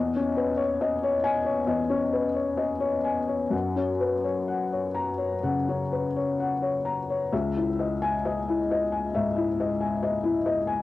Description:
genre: neoclassical minimalist piano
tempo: 63-69 BPM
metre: 4/4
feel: rubato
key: C# dorian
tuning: A4 = 441 Hz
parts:
  - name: felt-muted upright piano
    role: solo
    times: 0.0-10.8 s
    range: C#2 to A#5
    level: -24 LUFS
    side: left 3 dB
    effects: cassette tape
room: light reverb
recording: home recording on cassette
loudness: -24 LUFS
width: side -15 dB against mid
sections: 0.0-7.3 A section; 7.3-10.8 B section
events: none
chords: 0.0 C#madd9/E; 3.5 F#; 7.3 C#madd9

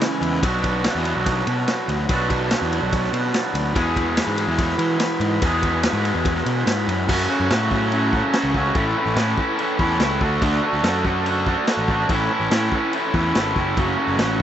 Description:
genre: indie rock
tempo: 144 BPM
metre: 4/4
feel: straight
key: A major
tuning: A4 = 440 Hz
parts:
  - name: raw garage guitar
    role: riff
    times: 0.0-14.4 s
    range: E2 to G#4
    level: -21 LUFS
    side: right 1 dB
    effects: overdrive, slapback echo
  - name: raw garage drum kit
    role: drums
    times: 0.0-14.3 s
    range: crash cymbal, kick drum, ride cymbal, snare drum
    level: -25 LUFS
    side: equal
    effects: none
  - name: fuzz picked electric bass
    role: bass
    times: 0.2-14.4 s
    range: F#1 to E3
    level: -24 LUFS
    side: equal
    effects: overdrive
room: little or no reverb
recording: recorded outdoors, with no room sound, nothing above 8.0 kHz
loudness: -18 LUFS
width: side -10 dB against mid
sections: 0.0-7.1 A section; 7.1-14.4 B section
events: none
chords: 0.4 Bm; 3.8 E; 7.1 F#m; 8.8 A; 10.2 D; 12.1 A; 13.8 F#m

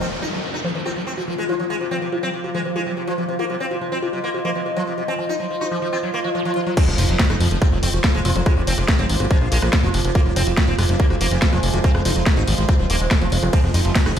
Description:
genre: psychedelic trance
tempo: 142 BPM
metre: 4/4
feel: straight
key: F phrygian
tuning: A4 = 439 Hz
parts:
  - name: sitar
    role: melody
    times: 0.0-14.2 s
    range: C3 to Eb4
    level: -27 LUFS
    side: equal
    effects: phaser, sidechain pumping, digital delay
  - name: overtone-sweeping drone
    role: sustained chords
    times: 0.0-14.2 s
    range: F3 to F4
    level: -28 LUFS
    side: left 1 dB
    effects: chorus, built-in reverb, phaser, sidechain pumping
  - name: liquid acid bass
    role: riff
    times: 0.0-14.2 s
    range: F3 to Gb4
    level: -28 LUFS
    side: moving between left 4 dB and right 4 dB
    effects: phaser, auto-pan, vintage 12-bit sampler grit, sidechain pumping, digital delay
  - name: downlifter, swell and impact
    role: sound effects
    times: 0.0-3.4, 6.1-8.5 s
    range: none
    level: -29 LUFS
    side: equal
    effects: none
  - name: warbly tape-like pad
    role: texture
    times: 0.0-14.2 s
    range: F4 to F5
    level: -29 LUFS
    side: right 4 dB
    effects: chorus, built-in reverb, sidechain pumping
  - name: drum and bass drum kit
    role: drums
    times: 6.8-14.2 s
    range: crash cymbal, hi-hat, ride cymbal, rim click, snare drum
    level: -24 LUFS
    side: equal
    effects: overdrive, low-pass filter on snare, low-pass filter on hats, low-pass filter on cymbals
  - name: electronic kick drum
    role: drums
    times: 6.8-14.0 s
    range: none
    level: -16 LUFS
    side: equal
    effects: overdrive
  - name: fat analog bass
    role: bass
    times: 6.9-14.2 s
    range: Eb1 to Bb1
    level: -20 LUFS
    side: equal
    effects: none
  - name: metallic wobble bass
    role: second line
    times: 8.2-9.7 s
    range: F3 to C4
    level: -36 LUFS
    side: left 4 dB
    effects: none
room: light reverb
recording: played on a big sound system in a bare room, stone room reverb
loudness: -17 LUFS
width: side -9 dB against mid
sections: 0.0-6.8 A section; 6.8-14.2 B section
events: swell 6.1-6.8; drop 6.8-14.2; impact 6.8-8.5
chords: 0.0 F5

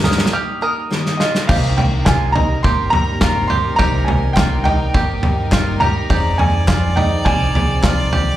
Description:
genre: indie folk with a building arrangement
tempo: 104 BPM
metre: 4/4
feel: straight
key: C minor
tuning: A4 = 439 Hz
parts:
  - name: warm upright piano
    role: melody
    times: 0.0-8.4 s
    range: Eb5 to F6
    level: -21 LUFS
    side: equal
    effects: plate reverb, slapback echo
  - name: felt-muted upright piano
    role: accompaniment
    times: 0.0-8.4 s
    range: F1 to Eb5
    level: -32 LUFS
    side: left 2 dB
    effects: none
  - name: picked twelve-string acoustic guitar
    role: accompaniment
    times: 0.0-8.4 s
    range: G2 to Ab4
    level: -28 LUFS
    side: left 4 dB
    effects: plate reverb, slapback echo
  - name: bluegrass banjo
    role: arpeggios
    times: 0.0-8.4 s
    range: G3 to Bb4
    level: -24 LUFS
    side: right 4 dB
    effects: plate reverb, slapback echo
  - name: upright bass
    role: bass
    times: 0.0-8.3 s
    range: C2 to G2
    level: -20 LUFS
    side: equal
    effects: none
  - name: loose indie drum kit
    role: drums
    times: 0.0-8.3 s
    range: crash cymbal, kick drum, snare drum, toms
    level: -17 LUFS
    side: equal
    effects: none
  - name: bright fiddle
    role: second line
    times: 1.4-8.4 s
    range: A4 to D5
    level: -27 LUFS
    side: left 1 dB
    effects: plate reverb, slapback echo
  - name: warm chamber string section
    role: sustained chords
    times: 1.5-8.4 s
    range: C3 to Eb4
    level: -29 LUFS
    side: equal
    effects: plate reverb
  - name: group handclap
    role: percussion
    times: 2.1-8.0 s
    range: none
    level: -30 LUFS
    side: left 3 dB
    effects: none
room: light reverb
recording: live gig heard through the venue's PA, club reverb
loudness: -14 LUFS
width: side -13 dB against mid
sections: 0.0-1.5 A section; 1.5-8.4 B section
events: build-up 0.0-1.5; drum fill 0.0-0.3, 0.9-1.5; break 0.3-1.5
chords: 0.0 Eb/G; 1.5 Cm7; 6.1 Fm7

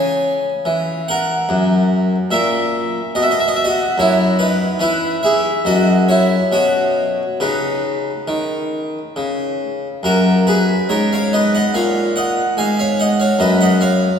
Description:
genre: classical, baroque-style suite movement for harpsichord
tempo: 70 BPM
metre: 4/4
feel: uneven beats, rubato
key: B major, F# major from 10.0 s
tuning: A4 = 439 Hz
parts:
  - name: harpsichord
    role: solo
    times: 0.0-14.2 s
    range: F#2 to G#5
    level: -14 LUFS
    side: equal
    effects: none
room: wet church reverb, RT60 2.9 s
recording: recorded in a church or concert hall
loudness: -14 LUFS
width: side -7 dB against mid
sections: 0.0-10.0 A section; 10.0-14.2 A section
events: none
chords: 0.0 C#m; 1.5 F#7; 3.1 B; 4.8 E; 5.7 F#5; 6.5 B; 10.0 F#; 13.4 B/F#

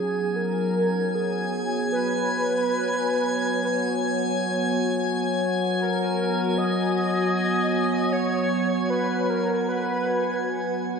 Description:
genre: ambient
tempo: free time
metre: none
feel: none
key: unclear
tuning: A4 = 440 Hz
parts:
  - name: warm velvety synth lead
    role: melody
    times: 0.0-10.8 s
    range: G#4 to D#5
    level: -26 LUFS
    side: equal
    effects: chorus, tape echo
  - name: warbly tape-like pad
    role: sustained chords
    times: 0.0-11.0 s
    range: F#3 to F#5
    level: -25 LUFS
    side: right 1 dB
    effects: chorus, built-in reverb
  - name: drifting glass-harmonics texture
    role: texture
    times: 0.0-11.0 s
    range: G#5 to G#6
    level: -30 LUFS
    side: left 2 dB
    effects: chorus, built-in reverb
room: wet lush hall reverb, RT60 2.6 s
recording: none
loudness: -22 LUFS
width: side -5 dB against mid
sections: 0.0-11.0 A section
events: filter sweep on ambient pad 0.0-11.0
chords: 0.0 Bsus2/F#

